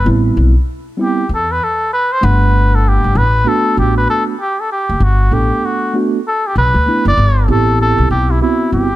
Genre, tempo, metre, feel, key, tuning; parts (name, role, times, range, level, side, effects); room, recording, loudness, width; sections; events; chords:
hip hop, jazz-hop; 97 BPM; 4/4; swing 62% on 16ths; G major; A4 = 441 Hz
trumpet with cup mute; melody; 0.0-9.0 s; E4 to D5; -16 LUFS; equal
mellow tine electric piano; accompaniment; 0.0-8.9 s; G3 to F#5; -17 LUFS; right 3 dB; slow stereo tremolo
upright bass; bass; 0.0-9.0 s; F#1 to E2; -13 LUFS; equal
little or no reverb; -11 LUFS; side -15 dB against mid
0.0-7.5 A section; 7.5-9.0 B section
muted trumpet solo 0.0-7.5
0.0 Am9; 2.2 Gmaj9; 7.5 Am9